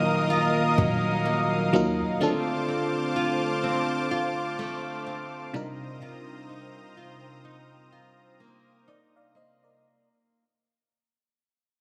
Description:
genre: contemporary R&B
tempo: 63 BPM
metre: 4/4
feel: swing 58% on 16ths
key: unclear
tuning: A4 = 439 Hz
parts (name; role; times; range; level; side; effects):
- FM electric piano; accompaniment; 0.0-10.1 s; C3 to F5; -32 LUFS; equal; chorus
- lush unison pad; sustained chords; 0.0-9.8 s; C4 to Eb6; -31 LUFS; equal; chorus
- nylon-string guitar; arpeggios; 0.0-10.4 s; C3 to F4; -32 LUFS; equal; tape echo
- warm 808-style bass; bass; 0.0-2.2 s; Eb1 to Eb2; -35 LUFS; equal; none
- downlifter; sound effects; 0.0-2.2 s; none; barely audible; none; none
room: light reverb, digital ambience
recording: recorded on a phone in the room, club reverb, compression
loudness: -26 LUFS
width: mono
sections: 0.0-9.8 A section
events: fade-out 0.0-9.8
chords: 0.0 Ebmadd9; 2.2 Dm7; 5.5 Cm11

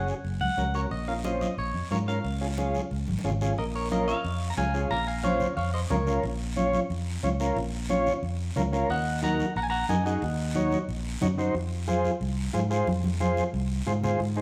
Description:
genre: latin, cumbia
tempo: 181 BPM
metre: 4/4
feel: straight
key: Bb minor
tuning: A4 = 440 Hz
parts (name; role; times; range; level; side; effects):
- twangy electric guitar; melody; 0.0-6.1, 8.9-10.9 s; Bb4 to Bb5; -33 LUFS; equal; spring reverb
- combo organ; accompaniment; 0.0-14.4 s; Db4 to Db5; -31 LUFS; equal; none
- fingered electric bass; bass; 0.0-14.4 s; Gb1 to Ab2; -32 LUFS; equal; none
- guiro; percussion; 0.1-14.4 s; none; -46 LUFS; equal; none
- congas; percussion; 0.2-14.1 s; none; -35 LUFS; equal; none
room: wet large studio reverb, RT60 0.9 s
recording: band playing live in one room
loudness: -28 LUFS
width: mono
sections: 0.0-3.6 A section; 3.6-14.2 B section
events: drum fill 3.1-3.6, 12.9-14.2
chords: 0.0 Gb; 0.9 Bbm; 2.2 Db; 3.6 Bbm; 8.9 Ebm; 11.5 Fm

